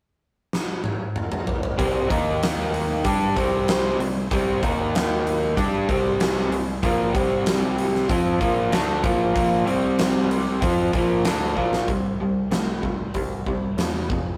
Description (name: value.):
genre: classic rock.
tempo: 95 BPM.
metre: 4/4.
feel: straight.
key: unclear.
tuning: A4 = 439 Hz.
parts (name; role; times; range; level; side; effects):
huge arena drum kit; drums; 0.5-14.2 s; hi-hat, kick drum, snare drum, toms; -28 LUFS; equal; none.
raw garage guitar; riff; 1.8-14.4 s; F2 to G4; -24 LUFS; equal; overdrive.
growling picked electric bass; bass; 1.8-14.4 s; F1 to G2; -31 LUFS; equal; overdrive.
room: light reverb.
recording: rough rehearsal-room recording.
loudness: -22 LUFS.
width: mono.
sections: 0.0-1.8 A section; 1.8-11.9 B section; 11.9-14.4 C section.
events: drum fill 0.5-1.8, 11.6-11.9.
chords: 0.0 N.C.; 1.8 C5; 2.1 Eb5; 3.0 C5; 4.6 Eb5; 5.6 C5; 6.8 Bb5; 7.1 C5; 8.1 Bb5; 9.7 C5; 10.6 Bb5; 11.9 C.